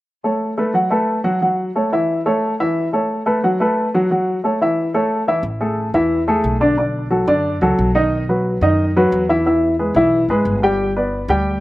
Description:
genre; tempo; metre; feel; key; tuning
latin; 179 BPM; 4/4; straight; A major; A4 = 439 Hz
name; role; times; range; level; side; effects
warm upright piano; accompaniment; 0.2-11.6 s; D3 to G5; -16 LUFS; equal; slapback echo
upright bass; bass; 5.4-11.6 s; G1 to F#2; -22 LUFS; equal; none
room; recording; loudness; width
little or no reverb; recorded outdoors, with no room sound; -15 LUFS; side -17 dB against mid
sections
0.1-5.4 A section; 5.4-11.6 B section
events
none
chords
0.1 A; 0.7 F#madd11; 1.4 F#m7; 2.1 A; 3.4 F#madd11; 4.1 F#m7; 4.8 A; 5.4 A5; 6.8 Bm7; 8.1 B; 9.5 E; 10.8 G

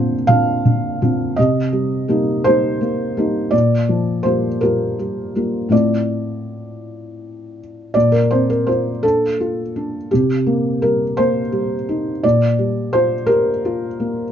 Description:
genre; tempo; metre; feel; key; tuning
neoclassical minimalist piano; 56 BPM (dotted quarters); 6/8; rubato; G minor; A4 = 440 Hz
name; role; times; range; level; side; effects
felt-muted upright piano; solo; 0.0-14.3 s; A2 to F5; -16 LUFS; equal; none
room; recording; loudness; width
moderate small room ambience, RT60 0.5 s; dark, warm production, nothing above 7.8 kHz; -15 LUFS; side -9 dB against mid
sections
0.0-7.9 A section; 7.9-14.3 B section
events
none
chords
0.0 Bbadd9; 1.4 Cm7; 3.5 Gm7/Bb; 5.7 Dm7/A; 7.9 Bbadd9; 10.1 Cm7; 12.2 Gm7/Bb

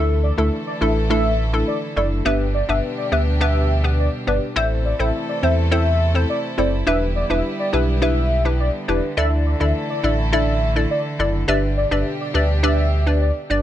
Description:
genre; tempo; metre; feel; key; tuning
dancehall; 104 BPM; 4/4; straight; G major; A4 = 440 Hz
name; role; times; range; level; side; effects
warm velvety synth lead; melody; 0.0-13.6 s; D5 to E5; -24 LUFS; equal; chorus, ping-pong delay
hollow square pluck; accompaniment; 0.0-13.6 s; A3 to D5; -22 LUFS; left 2 dB; chorus
warm studio string section; sustained chords; 0.0-13.6 s; B2 to A4; -28 LUFS; right 1 dB; none
sub bass with octave; bass; 0.0-13.6 s; E1 to E2; -20 LUFS; equal; none
room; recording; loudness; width
little or no reverb; nothing above 10.3 kHz; -17 LUFS; side -12 dB against mid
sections
0.0-13.6 A section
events
none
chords
0.0 Dsus2; 2.3 G; 4.6 Am; 6.9 Em7; 9.2 Dsus2; 11.5 G

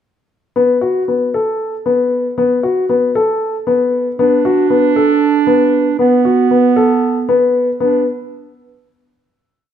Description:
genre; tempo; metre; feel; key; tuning
contemporary instrumental, chamber music in an uneven meter; 232 BPM (eighths); 7/8; straight; B minor; A4 = 440 Hz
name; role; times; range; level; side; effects
dark baby grand piano; arpeggios; 0.6-8.0 s; B3 to A4; -13 LUFS; left 3 dB; none
warm clarinet; second line; 4.2-8.1 s; B3 to D4; -14 LUFS; right 8 dB; none
room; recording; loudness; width
moderate recital hall reverb, RT60 1.4 s; minimal, uncompressed stereo recording; -12 LUFS; side -9 dB against mid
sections
0.6-7.8 A section; 7.8-9.6 final chord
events
none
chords
0.6 B5; 7.8 N.C.

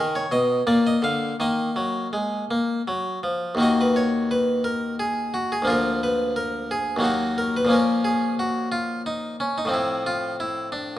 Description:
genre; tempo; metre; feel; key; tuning
classical, baroque-style suite movement for harpsichord; 80-92 BPM; 3/4; rubato; Eb minor; A4 = 441 Hz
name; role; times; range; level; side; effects
harpsichord; solo; 0.0-11.0 s; D2 to F5; -21 LUFS; left 1 dB; none
room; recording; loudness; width
moderate recital hall reverb, RT60 1.7 s; close, detailed microphones; -21 LUFS; side -13 dB against mid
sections
0.0-3.6 A section; 3.6-11.0 B section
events
none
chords
0.0 Bmaj9; 0.7 Bb; 1.4 Ebm; 5.7 Bb/D; 7.0 Ebm; 7.7 Bbm; 9.7 F/A

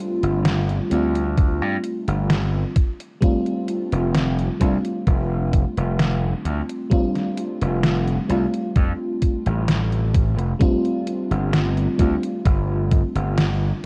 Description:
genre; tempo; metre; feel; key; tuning
vaporwave; 65 BPM; 4/4; straight; F major; A4 = 438 Hz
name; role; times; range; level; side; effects
FM electric piano with soft pad layer; accompaniment; 0.0-13.9 s; G3 to F4; -26 LUFS; equal; subtle chorus, delay
gritty slap bass; bass; 0.2-13.7 s; F1 to G2; -24 LUFS; equal; overdrive
detuned 8-bit digital drum machine; drums; 0.2-13.6 s; hi-hat, snare drum; -27 LUFS; equal; overdrive
electronic kick drum; drums; 1.4-13.1 s; none; -20 LUFS; equal; overdrive
room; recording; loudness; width
light reverb, digital ambience; cassette tape; -21 LUFS; mono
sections
0.0-13.9 A section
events
none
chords
0.0 F69

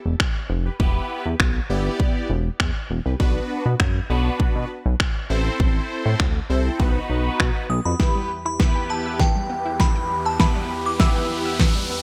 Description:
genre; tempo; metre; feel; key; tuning
dance-pop; 100 BPM; 4/4; straight; E minor; A4 = 440 Hz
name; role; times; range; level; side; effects
chorused synth bass; bass; 0.1-7.9 s; E1 to B2; -24 LUFS; equal; sidechain pumping
pop drum kit; drums; 0.2-11.7 s; finger snaps, kick drum, snare drum; -22 LUFS; equal; gated reverb
big bright polysynth; accompaniment; 0.7-11.6 s; B3 to D5; -31 LUFS; equal; chorus, phaser, sidechain pumping
glassy synth bell; melody; 7.7-11.9 s; G5 to E6; -28 LUFS; equal; chorus, phaser, delay
sweeping resonant pad; sustained chords; 8.0-12.0 s; E2 to B4; -33 LUFS; equal; chorus, sidechain pumping
unison pluck; arpeggios; 8.0-12.0 s; E3 to E6; -35 LUFS; equal; sidechain pumping, delay
riser; sound effects; 9.1-12.0 s; none; -34 LUFS; equal; none
room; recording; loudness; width
digital ambience; bright 1980s-style digital production; -22 LUFS; mono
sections
0.0-8.0 A section; 8.0-12.0 B section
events
build-up 8.0-12.0; drum fill 8.0-12.0; riser 9.1-12.0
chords
0.0 Em; 3.2 Bm; 5.3 Am; 6.8 B; 8.0 Em

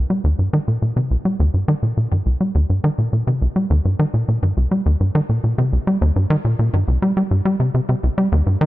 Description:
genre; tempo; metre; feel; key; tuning
ambient; 104 BPM; 4/4; straight; C minor; A4 = 440 Hz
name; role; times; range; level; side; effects
tight sequencer bass; solo; 0.0-8.7 s; C2 to G3; -16 LUFS; equal; tape echo
room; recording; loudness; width
light reverb, digital ambience; none; -16 LUFS; side -17 dB against mid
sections
0.0-8.7 A section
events
none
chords
none

